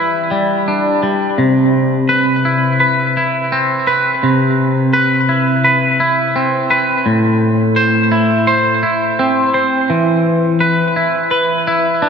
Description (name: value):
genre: rock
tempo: 85 BPM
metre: 4/4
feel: straight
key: unclear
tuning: A4 = 443 Hz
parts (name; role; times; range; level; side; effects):
- twangy electric guitar; solo; 0.0-12.1 s; A2 to C5; -12 LUFS; equal; phaser, ping-pong delay
room: wet cathedral reverb, RT60 5.3 s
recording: dreamy mix soaked in reverb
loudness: -12 LUFS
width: side -6 dB against mid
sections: 0.0-1.4 A section; 1.4-12.1 B section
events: none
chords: 0.0 Em7; 1.4 Cmaj7; 7.1 Am; 9.9 E5